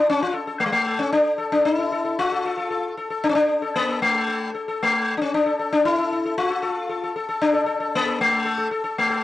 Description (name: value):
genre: indian classical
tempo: 115 BPM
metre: 4/4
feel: straight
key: A raga bhairav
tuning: A4 = 440 Hz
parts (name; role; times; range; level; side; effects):
- sitar; solo; 0.0-9.2 s; G#3 to A4; -20 LUFS; left 2 dB; cassette tape
room: wet studio reverb, RT60 0.5 s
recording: home recording on cassette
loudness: -20 LUFS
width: side -15 dB against mid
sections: 0.0-9.2 A section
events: none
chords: none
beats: | 0.06 0.59 1.12 1.65 | 2.17 2.70 3.23 3.75 | 4.27 4.80 5.32 5.84 | 6.36 6.88 7.40 7.92 | 8.44 8.96